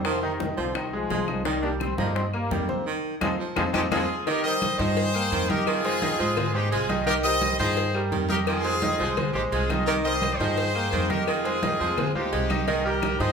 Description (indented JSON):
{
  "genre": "latin, salsa",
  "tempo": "171 BPM",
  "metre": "4/4",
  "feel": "straight",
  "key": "C minor",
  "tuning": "A4 = 440 Hz",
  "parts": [
    { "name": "bright trombone section", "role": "melody", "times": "0.0-4.0 s", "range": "C3 to D4", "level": "-30 LUFS", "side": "left 2 dB", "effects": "none" },
    { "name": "bright grand piano", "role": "accompaniment", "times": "0.0-13.3 s", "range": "Eb3 to G5", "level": "-29 LUFS", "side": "right 1 dB", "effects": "none" },
    { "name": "upright bass", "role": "bass", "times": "0.0-13.3 s", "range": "Bb1 to Ab2", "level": "-30 LUFS", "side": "equal", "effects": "none" },
    { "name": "bongos and cowbell", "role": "percussion", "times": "0.0-13.3 s", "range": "none", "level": "-35 LUFS", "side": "left 6 dB", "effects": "none" },
    { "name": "claves", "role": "percussion", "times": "0.0-13.2 s", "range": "none", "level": "-38 LUFS", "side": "left 9 dB", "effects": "none" },
    { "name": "breathy baritone saxophone", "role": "second line", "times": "0.1-13.3 s", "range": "Eb3 to Ab3", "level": "-31 LUFS", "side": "right 3 dB", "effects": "none" },
    { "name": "congas", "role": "percussion", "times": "0.1-13.2 s", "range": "none", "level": "-32 LUFS", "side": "right 1 dB", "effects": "none" },
    { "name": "brilliant horn section", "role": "melody", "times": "3.7-13.3 s", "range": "Eb4 to Eb5", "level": "-26 LUFS", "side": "left 1 dB", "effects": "none" }
  ],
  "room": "wet large studio reverb, RT60 0.9 s",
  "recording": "band playing live in one room",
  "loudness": "-22 LUFS",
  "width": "side -6 dB against mid",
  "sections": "0.0-4.3 A section; 4.3-13.3 B section",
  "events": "drum fill 2.9-4.3; band accent 2.9-4.3",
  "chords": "0.1 Fm7; 1.5 Cm7; 2.9 Fm7; 4.3 Cm7; 5.7 Fm7; 7.1 Cm7; 8.5 Fm7; 9.9 Cm7; 11.3 Fm7; 12.7 Cm7"
}